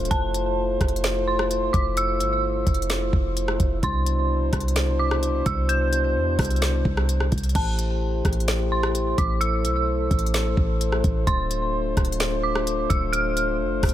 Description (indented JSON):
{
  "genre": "hip hop, atmospheric cloud-rap",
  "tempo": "129 BPM",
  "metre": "4/4",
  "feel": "half-time",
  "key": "A minor",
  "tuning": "A4 = 442 Hz",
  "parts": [
    { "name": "mellow French horn section", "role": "sustained chords", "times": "0.0-13.9 s", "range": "B2 to C5", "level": "-26 LUFS", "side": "left 1 dB", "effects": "sidechain pumping" },
    { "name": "warm 808-style bass", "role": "bass", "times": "0.0-13.9 s", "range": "D1 to E2", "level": "-25 LUFS", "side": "equal", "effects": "none" },
    { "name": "dark detuned synth bell", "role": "melody", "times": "0.1-13.6 s", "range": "A5 to G6", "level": "-28 LUFS", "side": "right 2 dB", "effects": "chorus, low-pass filter, tape echo" },
    { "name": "smooth R&B drum kit", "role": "drums", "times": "0.1-13.9 s", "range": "crash cymbal, hi-hat, kick drum, rim click, snare drum", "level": "-25 LUFS", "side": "equal", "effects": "none" }
  ],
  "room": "little or no reverb",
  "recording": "none",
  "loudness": "-20 LUFS",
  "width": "side -12 dB against mid",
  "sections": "0.0-7.6 A section; 7.6-13.9 A section",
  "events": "none",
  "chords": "0.1 Fmaj7; 3.8 Cmaj9; 7.6 Am7; 11.3 Dm7"
}